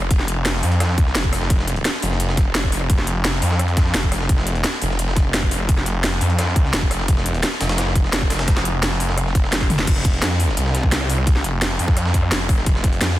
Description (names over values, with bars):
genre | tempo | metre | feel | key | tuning
dark technical drum and bass | 172 BPM | 4/4 | straight | unclear | A4 = 441 Hz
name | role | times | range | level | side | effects
snarling distorted saw bass | bass | 0.0-13.2 s | F1 to F2 | -20 LUFS | equal | distortion, overdrive, sidechain pumping
drum and bass drum kit | drums | 0.0-13.1 s | crash cymbal, hi-hat, rim click, snare drum, toms | -23 LUFS | equal | none
breakbeat sampler-style drum kit | drums | 0.1-13.2 s | hi-hat, snare drum | -27 LUFS | equal | high-pass filter on snare, high-pass filter on hats, high-pass filter on room
electronic kick drum | drums | 0.1-12.9 s | none | -18 LUFS | equal | none
room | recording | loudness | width
digital ambience | dense, heavily limited modern master | -17 LUFS | side -15 dB against mid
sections
0.0-9.9 A section; 9.9-13.2 A section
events
drop 0.0-9.9, 9.9-13.2; drum fill 9.6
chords
none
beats
| 0.11 0.46 0.80 1.15 | 1.50 1.85 2.20 2.55 | 2.90 3.25 3.60 3.94 | 4.29 4.64 4.99 5.34 | 5.69 6.04 6.38 6.73 | 7.08 7.43 7.78 8.13 | 8.48 8.83 9.18 9.53 | 9.87 10.22 10.57 10.92 | 11.27 11.62 11.97 12.32 | 12.66 13.01